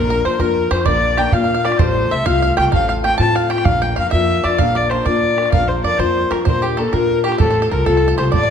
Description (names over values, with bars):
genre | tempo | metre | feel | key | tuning
celtic folk, Celtic slide | 128 BPM (dotted quarters) | 12/8 | straight | unclear | A4 = 440 Hz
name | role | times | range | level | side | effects
dark fiddle | melody | 0.0-8.5 s | G4 to A5 | -18 LUFS | left 3 dB | none
bluegrass banjo | second line | 0.0-8.5 s | G4 to A5 | -24 LUFS | right 6 dB | none
picked steel-string acoustic guitar | accompaniment | 0.0-8.5 s | A2 to Bb4 | -20 LUFS | left 4 dB | none
upright bass | bass | 0.0-8.5 s | A1 to Bb2 | -21 LUFS | right 1 dB | none
bodhran | percussion | 0.0-8.4 s | none | -22 LUFS | right 3 dB | none
room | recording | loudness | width
moderate recital hall reverb, RT60 1.4 s | none | -14 LUFS | side -8 dB against mid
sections
0.0-8.5 A section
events
none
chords
0.0 Bb; 1.8 F/A; 3.7 Bb; 7.4 F/A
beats
0.40 0.86 1.33 | 1.79 2.26 2.73 3.19 | 3.66 4.13 4.59 5.06 | 5.53 6.00 6.46 6.93 | 7.40 7.87 8.33